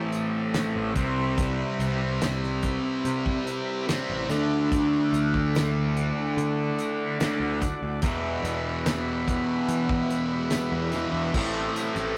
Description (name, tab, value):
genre	psychedelic rock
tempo	72 BPM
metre	4/4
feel	straight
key	A dorian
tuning	A4 = 440 Hz
part	combo organ	sustained chords	0.0-12.2 s	G3 to F#5	-36 LUFS	equal	none
part	fuzz guitar	riff	0.0-12.2 s	E2 to D4	-29 LUFS	equal	distortion, phaser
part	fuzz picked electric bass	bass	0.0-12.2 s	A1 to E3	-34 LUFS	equal	overdrive
part	damped 70s drum kit	drums	0.1-12.2 s	crash cymbal, hi-hat, kick drum, snare drum	-32 LUFS	equal	none
part	tambourine	percussion	0.1-12.0 s	none	-49 LUFS	equal	none
room	moderate studio reverb, RT60 0.6 s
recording	rough rehearsal-room recording, tube saturation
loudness	-26 LUFS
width	mono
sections	0.0-11.4 A section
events	none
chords	0.0 Am7; 1.0 Cmaj7; 4.3 Dsus2; 8.0 Em; 11.4 Am7